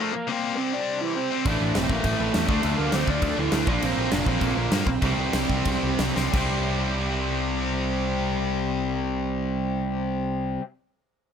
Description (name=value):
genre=punk rock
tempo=173-203 BPM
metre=4/4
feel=straight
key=C mixolydian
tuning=A4 = 440 Hz
part: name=lead guitar through a small cranked amp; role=melody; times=0.0-6.0 s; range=E3 to D5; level=-28 LUFS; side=right 3 dB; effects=overdrive
part: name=overdriven electric guitar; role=riff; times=0.0-10.6 s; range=A2 to D4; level=-28 LUFS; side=left 9 dB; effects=none
part: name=crunchy overdriven guitar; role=riff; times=1.5-10.6 s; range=A2 to D4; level=-32 LUFS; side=equal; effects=none
part: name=distorted electric guitar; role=riff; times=1.5-10.6 s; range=A2 to G4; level=-30 LUFS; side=right 12 dB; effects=overdrive
part: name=growling picked electric bass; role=bass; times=1.5-10.6 s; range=E1 to G2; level=-29 LUFS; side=equal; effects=overdrive
part: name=big rock drum kit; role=drums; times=1.5-6.4 s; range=crash cymbal, kick drum, snare drum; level=-28 LUFS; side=equal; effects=none
room=light reverb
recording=none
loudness=-22 LUFS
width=side -7 dB against mid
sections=0.0-6.3 A section; 6.3-9.1 B section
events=slowing down 3.8-6.3; drum fill 6.2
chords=0.3 C; 1.5 Am; 2.5 Dm; 3.7 Bb; 5.0 C